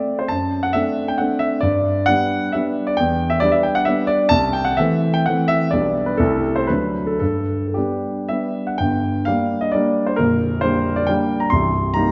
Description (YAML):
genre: classical, romantic triple-time dance for piano with dotted rhythms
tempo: 105-142 BPM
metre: 3/4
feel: rubato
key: G major, G minor from 8.8 s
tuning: A4 = 440 Hz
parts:
  - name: warm grand piano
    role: solo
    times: 0.0-12.1 s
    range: Bb0 to C6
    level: -19 LUFS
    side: equal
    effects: none
room: wet recital hall reverb, RT60 1.6 s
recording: nothing above 7.7 kHz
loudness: -19 LUFS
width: mono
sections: 0.0-8.8 A section; 8.8-12.1 B section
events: none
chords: 0.3 D7/F#; 1.6 G; 3.0 Em7; 4.3 Am/C; 5.7 G/B; 6.2 Am7/C; 6.7 D; 7.2 G; 8.8 Gm; 10.2 Gm/Bb; 11.5 Cm7